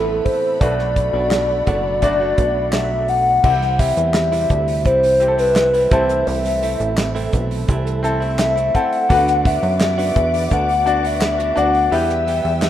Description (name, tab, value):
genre	piano-driven pop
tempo	85 BPM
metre	4/4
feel	straight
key	unclear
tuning	A4 = 439 Hz
part	hollow clarinet-like synth lead	melody	0.0-12.7 s	A4 to F#5	-17 LUFS	left 2 dB	chorus
part	bright grand piano	accompaniment	0.0-12.7 s	B2 to D5	-26 LUFS	left 2 dB	none
part	warm studio string section	sustained chords	0.0-12.7 s	C4 to E6	-31 LUFS	right 1 dB	none
part	direct-recorded clean electric guitar	riff	0.0-12.7 s	A2 to G4	-27 LUFS	right 5 dB	none
part	plucky analog bass	bass	0.0-12.7 s	F#1 to F#2	-22 LUFS	equal	none
part	damped 70s drum kit	drums	0.3-12.7 s	crash cymbal, handclaps, hi-hat, kick drum, snare drum	-21 LUFS	right 1 dB	none
room	moderate plate reverb, RT60 2.0 s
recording	rough home demo mix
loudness	-15 LUFS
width	side -11 dB against mid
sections	0.0-3.4 A section; 3.4-12.7 B section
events	none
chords	0.0 Amadd9; 0.6 Bm7; 3.4 C; 5.9 Am; 9.1 Bm/D; 11.9 Em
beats	| 0.61 1.32 2.03 2.73 | 3.44 4.15 4.86 5.56 | 6.27 6.98 7.68 8.39 | 9.10 9.80 10.51 11.21 | 11.92 12.62